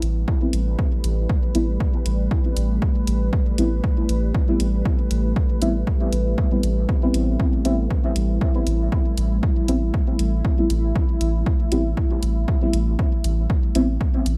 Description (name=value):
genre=dub techno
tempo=118 BPM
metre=4/4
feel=swing 55% on 16ths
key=A minor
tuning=A4 = 443 Hz
part: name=deep dark ambient pad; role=sustained chords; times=0.1-14.4 s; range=G3 to B4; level=-31 LUFS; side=equal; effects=chorus, built-in reverb, sidechain pumping
part: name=warm sub bass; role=bass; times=0.0-14.4 s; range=A1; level=-24 LUFS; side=equal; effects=sidechain pumping
part: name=electronic hi-hat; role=drums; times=0.0-14.4 s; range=none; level=-34 LUFS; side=equal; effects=overdrive, studio reverb
part: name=electronic kick drum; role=drums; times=0.3-14.1 s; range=none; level=-24 LUFS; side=equal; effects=overdrive, studio reverb
part: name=deep mellow chord stab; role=stabs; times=0.4-13.9 s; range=G3 to E4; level=-28 LUFS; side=equal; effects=chorus, phaser, sidechain pumping, dub echo
room=little or no reverb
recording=none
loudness=-21 LUFS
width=mono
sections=0.0-14.4 A section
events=none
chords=0.0 Am9